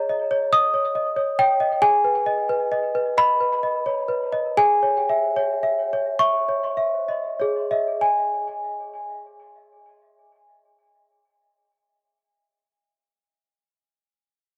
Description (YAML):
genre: classical, lullaby for celesta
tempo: 32-47 BPM (dotted quarters)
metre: 6/8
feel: rubato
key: G# minor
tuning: A4 = 439 Hz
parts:
  - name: worn celesta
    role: solo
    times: 0.0-14.0 s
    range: G#4 to D#6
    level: -22 LUFS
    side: equal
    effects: tape echo
room: light reverb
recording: dry, gritty hardware recording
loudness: -22 LUFS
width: mono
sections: 0.0-8.0 A section; 8.0-11.7 B section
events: slowing down 0.5-8.0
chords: 0.0 D#5/G#; 1.8 G#m; 4.6 C#m/G#; 8.0 G#5